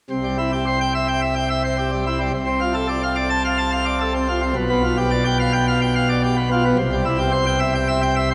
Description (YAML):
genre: classical, organ toccata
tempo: 108 BPM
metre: 4/4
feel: straight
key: C major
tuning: A4 = 440 Hz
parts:
  - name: pipe organ, plenum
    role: solo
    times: 0.1-8.3 s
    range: B1 to A5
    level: -20 LUFS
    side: equal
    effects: none
room: wet cathedral reverb, RT60 5.2 s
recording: none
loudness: -20 LUFS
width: mono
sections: 0.1-8.3 A section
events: none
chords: 0.1 C; 2.3 Dm7/C; 4.6 G7/B; 6.8 C